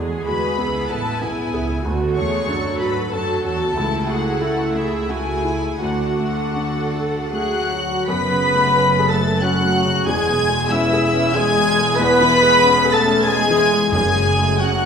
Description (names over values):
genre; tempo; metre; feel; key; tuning
cinematic, emotional film score for orchestra; 76-96 BPM; 3/4; rubato; F# minor; A4 = 440 Hz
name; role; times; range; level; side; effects
felt-muted upright piano; accompaniment; 0.0-14.9 s; C#2 to B4; -25 LUFS; left 1 dB; none
rich studio viola section; accompaniment; 0.0-14.9 s; F#3 to B4; -23 LUFS; right 1 dB; none
dark studio cello section; bass; 0.0-14.9 s; E2 to B4; -27 LUFS; right 3 dB; none
dark studio double bass section; bass; 0.0-14.9 s; E1 to G#2; -26 LUFS; right 4 dB; none
clear studio violin section; melody; 0.3-14.9 s; E5 to B6; -24 LUFS; left 2 dB; none
warm studio violin section; second line; 0.3-14.9 s; E4 to B5; -24 LUFS; left 4 dB; none
mellow clarinet; second line; 7.3-14.9 s; E4 to B4; -25 LUFS; left 1 dB; none
mellow concert flute; second line; 7.3-14.9 s; E5 to B5; -25 LUFS; equal; none
warm French horn section; sustained chords; 7.3-14.9 s; E3 to B3; -23 LUFS; left 3 dB; none
timpani; percussion; 13.9-14.9 s; F#2; -23 LUFS; equal; none
room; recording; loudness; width
wet concert hall reverb, RT60 1.9 s; minimal, uncompressed stereo recording; -16 LUFS; side -6 dB against mid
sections
0.0-8.1 A section; 8.1-14.9 B section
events
none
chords
0.0 E; 1.9 D; 3.8 A/C#; 5.8 D; 8.1 F#madd9; 10.1 E6; 12.0 C#m/E; 13.9 F#madd9